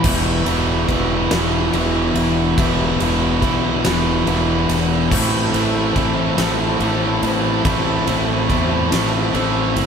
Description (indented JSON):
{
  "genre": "post-rock",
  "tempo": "47 BPM (dotted quarters)",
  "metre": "6/8",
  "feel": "straight",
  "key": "E minor",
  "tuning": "A4 = 440 Hz",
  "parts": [
    { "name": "dark studio string section", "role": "sustained chords", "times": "0.0-9.9 s", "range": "D4 to A5", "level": "-30 LUFS", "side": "left 4 dB", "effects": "none" },
    { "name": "crunchy overdriven guitar", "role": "riff", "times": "0.0-9.9 s", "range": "A2 to E4", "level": "-20 LUFS", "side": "left 5 dB", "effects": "none" },
    { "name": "tight distorted guitar", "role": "riff", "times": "0.0-9.9 s", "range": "E2 to A3", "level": "-21 LUFS", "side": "right 8 dB", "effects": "distortion" },
    { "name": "fuzz fingered electric bass", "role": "bass", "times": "0.0-9.9 s", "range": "E1 to E2", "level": "-23 LUFS", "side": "equal", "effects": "overdrive" },
    { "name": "huge arena drum kit", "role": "drums", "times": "0.0-9.9 s", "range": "crash cymbal, kick drum, ride cymbal, snare drum", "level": "-22 LUFS", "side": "equal", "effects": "none" }
  ],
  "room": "light reverb",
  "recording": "band playing live in one room",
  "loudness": "-15 LUFS",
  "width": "side -7 dB against mid",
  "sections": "0.0-9.9 A section",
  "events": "none",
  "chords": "0.0 Em7; 5.1 Am"
}